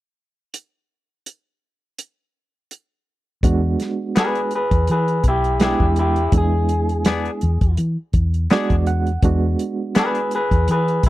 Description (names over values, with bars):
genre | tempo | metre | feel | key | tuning
straight-eighth soul blues | 83 BPM | 4/4 | swing 56% on 16ths | E mixolydian | A4 = 440 Hz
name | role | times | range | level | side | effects
warm soul drum kit | drums | 0.5-11.1 s | hi-hat, kick drum, snare drum | -19 LUFS | equal | none
barky reed electric piano | accompaniment | 3.4-10.4 s | G#3 to F#5 | -23 LUFS | right 4 dB | overdrive, fast tremolo
vintage muted fingered electric bass | bass | 3.4-11.1 s | B1 to E3 | -19 LUFS | equal | tube saturation
electric guitar through a small old amp | melody | 4.2-11.1 s | E4 to B4 | -21 LUFS | left 1 dB | none
direct-recorded clean electric guitar | stabs | 4.2-10.2 s | B3 to G#4 | -25 LUFS | left 6 dB | wide subtle chorus
room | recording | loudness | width
studio reverb | dry, close 1970s-style studio recording | -16 LUFS | side -16 dB against mid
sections
0.5-3.4 A section; 3.4-11.1 B section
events
reed electric piano fill 8.1-9.2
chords
0.5 N.C.; 3.4 E7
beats
| 0.54 1.27 1.99 2.71 | 3.44 4.16 4.89 5.61 | 6.34 7.06 7.79 8.51 | 9.23 9.96 10.68